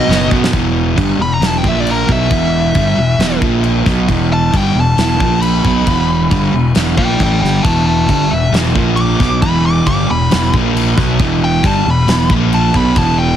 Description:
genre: hard rock.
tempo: 135 BPM.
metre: 4/4.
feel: straight.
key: E minor.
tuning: A4 = 439 Hz.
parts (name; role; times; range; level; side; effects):
nasal lead guitar with a parked wah; melody; 0.0-13.4 s; A#4 to D6; -18 LUFS; left 1 dB; overdrive, plate reverb.
overdriven semi-hollow guitar; riff; 0.0-13.4 s; E2 to B3; -17 LUFS; right 10 dB; none.
sludgy distorted guitar; riff; 0.0-13.4 s; E2 to B3; -17 LUFS; left 7 dB; overdrive.
fuzz fingered electric bass; bass; 0.1-13.4 s; E1 to F#2; -18 LUFS; equal; overdrive.
big rock drum kit; drums; 0.1-13.1 s; crash cymbal, kick drum, snare drum; -18 LUFS; equal; none.
room: light reverb.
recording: heavily compressed radio sound.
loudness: -11 LUFS.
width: side -10 dB against mid.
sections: 0.5-13.4 A section.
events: drum fill 0.1-0.5; lead electric guitar solo 0.5-13.4.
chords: 0.0 B; 0.5 Em; 1.6 A#5; 2.1 Em; 3.4 A#5; 3.9 Em; 5.2 A#5; 5.7 Em; 8.8 A#5; 9.2 Em; 10.5 A#5; 11.0 Em; 12.3 A#5; 12.7 Em.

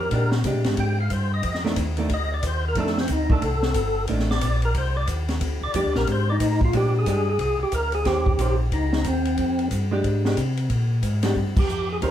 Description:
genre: soul jazz organ trio.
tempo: 181 BPM.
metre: 4/4.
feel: swing 62% on 8ths.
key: Bb mixolydian.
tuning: A4 = 440 Hz.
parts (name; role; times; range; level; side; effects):
percussive tonewheel organ; melody; 0.0-12.1 s; C4 to G5; -25 LUFS; equal; overdrive, chorus vibrato, slow rotary speaker, plate reverb.
archtop guitar, miked and amplified; accompaniment; 0.0-12.1 s; Eb3 to C5; -27 LUFS; right 1 dB; none.
mellow tonewheel organ; bass; 0.0-12.1 s; G1 to C3; -24 LUFS; equal; slow rotary speaker.
open jazz drum kit; drums; 0.1-12.1 s; crash cymbal, hi-hat, kick drum, ride cymbal, snare drum; -27 LUFS; equal; none.
room: moderate studio reverb, RT60 0.8 s.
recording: heard from further back in the room.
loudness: -20 LUFS.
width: side -11 dB against mid.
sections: 0.0-6.7 A section; 6.7-12.1 B section.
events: tonewheel organ solo 0.0-6.7; band accent 11.5.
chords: 0.1 Bb13; 1.4 F13; 5.4 Bb6; 6.7 Bb13; 8.1 Eb6; 9.4 Bb13.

